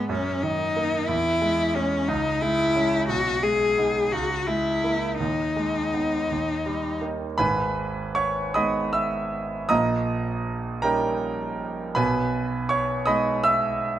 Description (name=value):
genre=classical, romantic duo for cello and grand piano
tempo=51-61 BPM (dotted quarters)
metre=6/8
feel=rubato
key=G# minor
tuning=A4 = 444 Hz
part: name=rich cello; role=melody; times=0.0-7.0 s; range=B3 to G#4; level=-23 LUFS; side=left 2 dB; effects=none
part: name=bright concert grand piano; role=accompaniment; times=0.0-14.0 s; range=G#1 to E6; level=-24 LUFS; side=right 2 dB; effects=none
room=moderate recital hall reverb, RT60 1.6 s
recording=close, detailed microphones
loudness=-22 LUFS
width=side -12 dB against mid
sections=0.0-7.4 A section; 7.4-14.0 B section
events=none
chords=0.1 D#m/F#; 1.1 C#m/E; 2.1 C#m; 3.1 G#m/B; 4.1 A#m7b5/C#; 5.2 G#m/D#; 6.3 D#; 7.4 G#m; 9.7 D#7/A#; 12.0 G#m/B